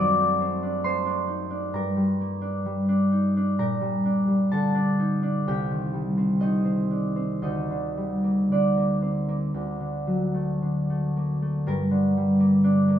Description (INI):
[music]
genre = classical, solo harp piece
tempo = 56-68 BPM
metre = 4/4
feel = rubato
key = G minor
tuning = A4 = 440 Hz
[part]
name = concert harp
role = solo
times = 0.0-13.0 s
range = C2 to F6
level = -22 LUFS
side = equal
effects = none
[sound]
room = moderate stone room reverb, RT60 1.1 s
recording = minimal, uncompressed stereo recording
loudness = -22 LUFS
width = side -10 dB against mid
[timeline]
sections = 0.0-11.6 A section; 11.6-13.0 B section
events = none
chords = 0.0 D7/F#; 1.8 Gm; 3.6 Gm/Bb; 5.4 Cm; 7.4 Gm/D; 9.5 D; 11.6 Gm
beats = 0.86 1.76 2.66 | 3.58 4.51 5.44 6.40 | 7.42 8.48 9.54 10.59 | 11.64 12.60